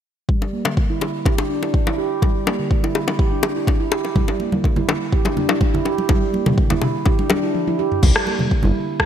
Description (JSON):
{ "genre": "afro house", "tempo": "124 BPM", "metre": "4/4", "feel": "straight", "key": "unclear", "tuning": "A4 = 441 Hz", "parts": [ { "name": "handpan", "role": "arpeggios", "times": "0.3-9.1 s", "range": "D3 to G4", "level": "-22 LUFS", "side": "right 3 dB", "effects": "sidechain pumping, low-pass filter, digital delay" }, { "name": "electronic kick drum", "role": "drums", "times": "0.3-9.1 s", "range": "none", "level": "-18 LUFS", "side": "equal", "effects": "none" }, { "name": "bongos", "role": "percussion", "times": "0.4-7.4 s", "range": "none", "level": "-24 LUFS", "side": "left 5 dB", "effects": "none" }, { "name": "congas", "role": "percussion", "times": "4.2-9.1 s", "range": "none", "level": "-25 LUFS", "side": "right 2 dB", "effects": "none" }, { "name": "afro-pop drum kit", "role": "drums", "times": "6.5-9.1 s", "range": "crash cymbal, rim click, toms", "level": "-22 LUFS", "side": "left 2 dB", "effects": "gated reverb" }, { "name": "round analog bass", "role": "bass", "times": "8.0-8.7 s", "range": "G1 to C2", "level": "-16 LUFS", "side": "equal", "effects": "sidechain pumping" } ], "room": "light reverb", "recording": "bright 1980s-style digital production", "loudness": "-17 LUFS", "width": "side -9 dB against mid", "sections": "0.3-8.0 A section; 8.0-9.1 B section", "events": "filter sweep on handpan 0.3-8.0, 8.0-9.1; break 7.5-8.0; drum fill 7.5-8.0", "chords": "0.3 Dsus24; 8.0 C7", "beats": "| 0.29 0.77 1.26 1.74 | 2.22 2.71 3.19 3.67 | 4.16 4.64 5.13 5.61 | 6.09 6.58 7.06 7.55 | 8.03 8.51 9.00" }